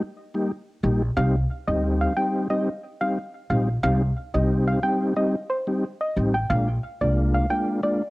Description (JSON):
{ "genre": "dancehall", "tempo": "90 BPM", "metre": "4/4", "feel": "straight", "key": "C minor", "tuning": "A4 = 440 Hz", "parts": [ { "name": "mellow tonewheel organ", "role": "accompaniment", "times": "0.0-8.0 s", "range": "G3 to G4", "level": "-24 LUFS", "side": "left 1 dB", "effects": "chorus vibrato, cassette tape" }, { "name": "upright bass", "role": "bass", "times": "0.8-7.4 s", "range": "A1 to D2", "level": "-23 LUFS", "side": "equal", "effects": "none" }, { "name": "soft round pluck", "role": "melody", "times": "1.2-7.9 s", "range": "C5 to G5", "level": "-27 LUFS", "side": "equal", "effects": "chorus, cassette tape" } ], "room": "moderate studio reverb, RT60 0.6 s", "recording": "home recording on cassette", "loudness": "-21 LUFS", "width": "side -21 dB against mid", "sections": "0.0-1.2 A section; 1.2-8.1 B section", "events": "none", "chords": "0.0 Eb; 1.2 Cm; 6.5 Bb7" }